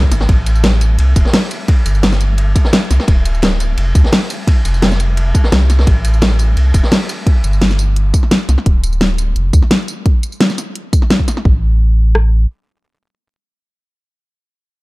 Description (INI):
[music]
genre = liquid drum and bass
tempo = 172 BPM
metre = 4/4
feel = straight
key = A minor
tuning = A4 = 440 Hz
[part]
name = warm sub bass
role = bass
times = 0.0-12.5 s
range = D1 to D2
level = -12 LUFS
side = equal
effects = none
[part]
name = pop drum kit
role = drums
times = 0.0-12.2 s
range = kick drum, rim click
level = -12 LUFS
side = equal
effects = none
[part]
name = vintage drum kit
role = drums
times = 0.0-7.2 s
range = hi-hat, ride cymbal, snare drum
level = -23 LUFS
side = equal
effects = high-pass filter on cymbals, high-pass filter on hats, high-pass filter on snare, high-pass filter on room
[part]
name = pop drum kit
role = drums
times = 0.1-11.4 s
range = hi-hat, snare drum, tambourine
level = -16 LUFS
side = equal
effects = none
[sound]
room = small room ambience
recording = dark, warm production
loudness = -11 LUFS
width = side -22 dB against mid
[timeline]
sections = 0.0-11.5 A section; 11.5-14.2 B section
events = drop 0.0-11.5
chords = none